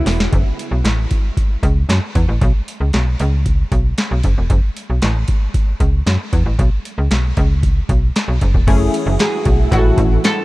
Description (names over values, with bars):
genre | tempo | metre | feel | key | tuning
early-eighties boogie funk | 115 BPM | 4/4 | straight | F# minor | A4 = 441 Hz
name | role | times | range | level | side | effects
oud | melody | 0.0, 9.2-10.4 s | F#4 to A4 | -21 LUFS | equal | diffuse ambient delay
phased string machine | sustained chords | 0.0-0.3, 8.7-10.4 s | C#3 to F#4 | -26 LUFS | right 2 dB | ensemble chorus, phaser
slap-like FM bass | bass | 0.0-10.2 s | E1 to F#2 | -16 LUFS | equal | none
booming analog drum machine | drums | 0.1-10.4 s | crash cymbal, handclaps, hi-hat, kick drum, snare drum | -17 LUFS | equal | overdrive
funky polysynth comp | accompaniment | 8.7-10.2 s | A3 to A4 | -22 LUFS | left 2 dB | chorus
room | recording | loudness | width
digital ambience | none | -14 LUFS | side -19 dB against mid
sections
0.3-8.7 A section; 8.7-10.4 B section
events
drum fill 0.0-0.3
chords
0.3 F#m7; 2.4 Bsus2; 3.2 C#7(no3); 4.5 F#m7; 6.6 Bsus2; 7.4 C#7(no3); 8.7 F#m7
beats
| 0.33 0.85 1.37 1.89 | 2.41 2.93 3.46 3.98 | 4.50 5.02 5.54 6.06 | 6.59 7.11 7.63 8.15 | 8.67 9.20 9.72 10.24